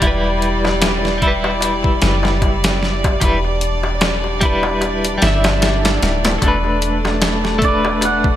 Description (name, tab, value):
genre	trip hop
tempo	75 BPM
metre	4/4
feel	swing 56% on 16ths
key	unclear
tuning	A4 = 438 Hz
part	clean electric guitar	accompaniment	0.0-8.4 s	G3 to E5	-20 LUFS	left 1 dB	tremolo, tape echo
part	dark studio violin section	sustained chords	0.0-8.4 s	G3 to D5	-22 LUFS	equal	none
part	soft 808-style bass	bass	0.0-8.4 s	D1 to G1	-21 LUFS	equal	tube saturation
part	boom bap sampler-style drum kit	drums	0.0-8.4 s	hi-hat, kick drum, snare drum	-18 LUFS	equal	gated reverb
part	darbuka	percussion	0.0-8.4 s	none	-26 LUFS	left 2 dB	none
part	santur	melody	7.6-8.4 s	D5 to F#5	-18 LUFS	right 4 dB	none
room	light reverb, studio reverb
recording	bright 1980s-style digital production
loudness	-14 LUFS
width	side -12 dB against mid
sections	0.0-8.4 A section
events	kick drops out 4.8-6.4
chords	0.0 Gmaj7/E; 6.4 Bm7/E